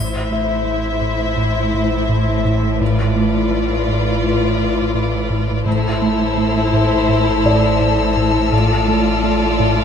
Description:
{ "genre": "cinematic", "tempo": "84 BPM", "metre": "4/4", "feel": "straight", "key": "A minor", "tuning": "A4 = 437 Hz", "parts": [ { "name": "rich chamber violin section", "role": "melody", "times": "0.0-9.8 s", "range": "C5 to E5", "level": "-25 LUFS", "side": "left 3 dB", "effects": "none" }, { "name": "rich chamber violin section", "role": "second line", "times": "0.0-9.8 s", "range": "A4 to C5", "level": "-24 LUFS", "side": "left 6 dB", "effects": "none" }, { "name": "rich studio viola section", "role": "accompaniment", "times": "0.0-9.8 s", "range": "E4 to F4", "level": "-22 LUFS", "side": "left 2 dB", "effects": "none" }, { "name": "round analog bass", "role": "riff", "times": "0.0-9.8 s", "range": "A2 to A3", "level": "-21 LUFS", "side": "equal", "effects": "none" }, { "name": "clear chamber double bass section", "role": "bass", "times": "0.0-0.6, 5.7-6.3 s", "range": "A1", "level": "-30 LUFS", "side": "right 1 dB", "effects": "none" }, { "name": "warm studio cello section", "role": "bass", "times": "0.0-9.8 s", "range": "A2", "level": "-21 LUFS", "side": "right 2 dB", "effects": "none" }, { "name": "sub bass with octave", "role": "drone", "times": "0.0-9.8 s", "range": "A1", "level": "-23 LUFS", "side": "equal", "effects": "none" }, { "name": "felt-muted upright piano", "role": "texture", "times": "0.3-2.8, 7.5-9.8 s", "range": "D5 to E5", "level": "-25 LUFS", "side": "left 3 dB", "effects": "none" }, { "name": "clear chamber violin section", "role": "texture", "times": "5.7-9.8 s", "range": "E6 to F6", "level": "-27 LUFS", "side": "left 2 dB", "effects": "none" } ], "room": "wet scoring stage reverb, RT60 1.9 s", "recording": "minimal, uncompressed stereo recording", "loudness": "-14 LUFS", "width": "side -7 dB against mid", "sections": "0.0-9.8 A section", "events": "none", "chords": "0.0 Am; 2.8 Bdim/A; 5.7 Am; 8.5 Dm/A", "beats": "0.67 1.38 2.09 | 2.81 3.52 4.24 4.95 | 5.67 6.38 7.09 7.81 | 8.52 9.24" }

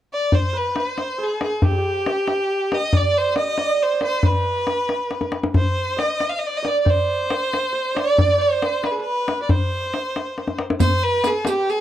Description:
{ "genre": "Persian modal ensemble", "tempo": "92 BPM (dotted quarters)", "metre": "6/8", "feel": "straight", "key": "C avaz esfahan", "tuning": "A4 = 438 Hz", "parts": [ { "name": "clear violin", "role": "melody", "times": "0.1-11.8 s", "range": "G4 to F5", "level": "-22 LUFS", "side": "equal", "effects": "none" }, { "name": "santur", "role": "second line", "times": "0.3-11.8 s", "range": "G4 to Eb5", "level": "-25 LUFS", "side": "right 5 dB", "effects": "none" }, { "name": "tombak", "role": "percussion", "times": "0.3-11.6 s", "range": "none", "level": "-21 LUFS", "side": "left 2 dB", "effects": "none" }, { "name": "riq", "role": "percussion", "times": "10.8-11.7 s", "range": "none", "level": "-27 LUFS", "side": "right 11 dB", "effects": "none" } ], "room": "small room ambience", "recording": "dry, close 1970s-style studio recording", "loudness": "-18 LUFS", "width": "side -12 dB against mid", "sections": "0.3-10.8 A section; 10.8-11.8 B section", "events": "drum fill 5.1-5.6, 10.4-10.8", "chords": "none", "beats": "| 0.31 0.97 | 1.62 2.28 | 2.93 3.59 | 4.24 4.90 | 5.56 6.21 | 6.87 7.52 | 8.18 8.84 | 9.49 10.15 | 10.80 11.46" }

